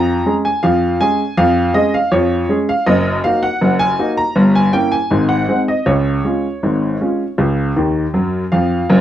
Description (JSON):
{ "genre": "ragtime piano", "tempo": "80 BPM", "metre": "2/4", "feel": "straight", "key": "Db major", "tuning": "A4 = 440 Hz", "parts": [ { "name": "clear upright piano", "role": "solo", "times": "0.0-9.0 s", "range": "Gb1 to Bb5", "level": "-13 LUFS", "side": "equal", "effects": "none" } ], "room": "moderate studio reverb, RT60 0.5 s", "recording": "dark, warm production", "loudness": "-13 LUFS", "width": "side -11 dB against mid", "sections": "0.0-8.9 A section", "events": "upright piano fill 7.8-8.9", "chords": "0.0 Db/F; 2.9 Ebm/Gb; 4.4 Gdim7; 5.1 Ab7; 5.9 Db" }